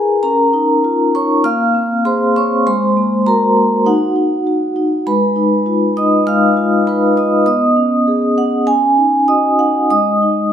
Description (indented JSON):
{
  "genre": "classical, contemporary piece for solo vibraphone",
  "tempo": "99 BPM",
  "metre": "4/4",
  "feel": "rubato",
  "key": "unclear",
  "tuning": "A4 = 439 Hz",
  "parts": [
    { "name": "vibraphone with soft mallets", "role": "solo", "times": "0.0-10.5 s", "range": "Ab3 to F6", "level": "-12 LUFS", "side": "equal", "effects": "none" }
  ],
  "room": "wet recital hall reverb, RT60 1.7 s",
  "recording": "minimal, uncompressed stereo recording",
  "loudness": "-12 LUFS",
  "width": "side -9 dB against mid",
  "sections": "0.0-10.5 A section",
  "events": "none",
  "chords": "0.2 Db69; 1.4 Bbm9; 2.6 Ab9; 3.9 Ebm; 5.1 Abm6; 7.5 B69; 8.7 Dbsus24; 9.9 Ab5"
}